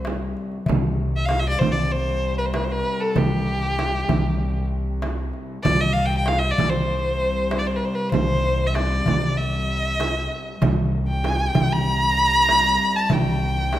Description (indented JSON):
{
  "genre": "Arabic maqam ensemble",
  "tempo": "96 BPM",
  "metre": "4/4",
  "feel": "straight",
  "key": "C maqam rast",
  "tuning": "A4 = 440 Hz",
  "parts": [
    { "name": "warm violin", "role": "melody", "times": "0.0-13.8 s", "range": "G4 to Bb5+41c", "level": "-22 LUFS", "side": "equal", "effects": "none" },
    { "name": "upright bass", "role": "bass", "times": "0.0-13.8 s", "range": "C2", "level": "-25 LUFS", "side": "equal", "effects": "none" },
    { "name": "muted studio cello section", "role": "drone", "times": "0.0-13.8 s", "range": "C2", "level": "-30 LUFS", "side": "left 2 dB", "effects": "none" },
    { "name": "darbuka", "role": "percussion", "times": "0.0-13.8 s", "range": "none", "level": "-27 LUFS", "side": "equal", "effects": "none" },
    { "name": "frame drum", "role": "percussion", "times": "0.1-13.8 s", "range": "none", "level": "-28 LUFS", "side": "right 4 dB", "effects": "none" }
  ],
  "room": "wet recital hall reverb, RT60 1.8 s",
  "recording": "none",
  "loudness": "-19 LUFS",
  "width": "side -13 dB against mid",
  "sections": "0.7-13.8 A section",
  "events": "none",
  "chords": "none"
}